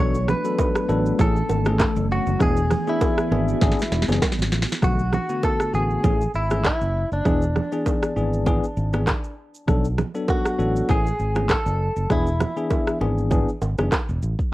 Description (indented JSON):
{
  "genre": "afrobeats",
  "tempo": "99 BPM",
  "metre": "4/4",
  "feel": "swing 55% on 16ths",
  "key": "unclear",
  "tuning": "A4 = 440 Hz",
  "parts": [
    { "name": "direct-recorded clean electric guitar", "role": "melody", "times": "0.0-13.0 s", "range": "D4 to C#5", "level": "-26 LUFS", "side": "equal", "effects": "cassette tape" },
    { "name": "bell-like tine electric piano", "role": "accompaniment", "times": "0.0-13.9 s", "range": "D3 to A4", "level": "-26 LUFS", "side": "left 3 dB", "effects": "fast stereo tremolo, cassette tape" },
    { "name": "glassy FM pad", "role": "sustained chords", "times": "0.2-4.8 s", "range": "E3 to G#4", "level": "-30 LUFS", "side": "left 1 dB", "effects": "ensemble chorus, built-in reverb, cassette tape" },
    { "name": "fingered electric bass", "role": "bass", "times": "0.0-14.3 s", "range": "E1 to B1", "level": "-23 LUFS", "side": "equal", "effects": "none" },
    { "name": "afro-pop drum kit", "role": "drums", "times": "0.1-14.5 s", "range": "handclaps, hi-hat, kick drum, rim click, shaker, snare drum", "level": "-23 LUFS", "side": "equal", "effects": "cassette tape" },
    { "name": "bongos and congas", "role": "percussion", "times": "0.3-14.1 s", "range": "none", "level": "-28 LUFS", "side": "right 4 dB", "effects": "none" }
  ],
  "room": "light reverb",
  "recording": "home recording on cassette",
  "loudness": "-19 LUFS",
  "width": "side -16 dB against mid",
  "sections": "0.0-4.8 A section; 4.8-14.5 B section",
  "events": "drum fill 3.6-4.8",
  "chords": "0.0 Bm7; 1.2 Amaj7; 2.4 E7; 4.8 Bm7; 6.0 Amaj7; 7.3 E7; 9.7 Bm7; 10.9 Amaj7; 12.1 E7"
}